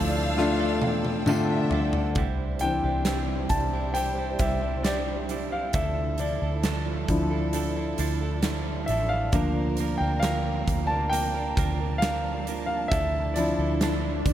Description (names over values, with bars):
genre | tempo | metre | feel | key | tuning
pop ballad | 67 BPM | 4/4 | straight | D minor | A4 = 440 Hz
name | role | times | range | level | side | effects
warm studio violin section | second line | 0.0-2.1 s | E5 to F5 | -34 LUFS | right 2 dB | none
warm grand piano | accompaniment | 0.0-14.3 s | A2 to A5 | -27 LUFS | left 2 dB | none
warm studio string section | sustained chords | 0.0-14.3 s | F3 to E6 | -36 LUFS | right 1 dB | none
direct-recorded clean electric guitar | arpeggios | 0.0-14.3 s | C3 to Bb4 | -34 LUFS | right 10 dB | spring reverb
vintage muted fingered electric bass | bass | 0.0-14.3 s | A1 to E2 | -30 LUFS | equal | none
huge arena drum kit | drums | 0.4-14.3 s | hi-hat, kick drum, snare drum, toms | -31 LUFS | equal | none
tambourine | percussion | 1.3-1.5 s | none | -41 LUFS | right 7 dB | none
swell | sound effects | 12.8-14.3 s | none | -36 LUFS | right 1 dB | none
room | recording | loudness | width
little or no reverb | none | -24 LUFS | side -11 dB against mid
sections
0.0-2.2 A section; 2.2-14.3 B section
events
drum fill 0.4-2.2; grand piano solo 2.2-14.3; swell 12.8-14.3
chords
0.0 Dmadd9; 2.2 Cadd9; 5.8 Dmadd9; 9.3 Bb/D; 12.9 Dmadd9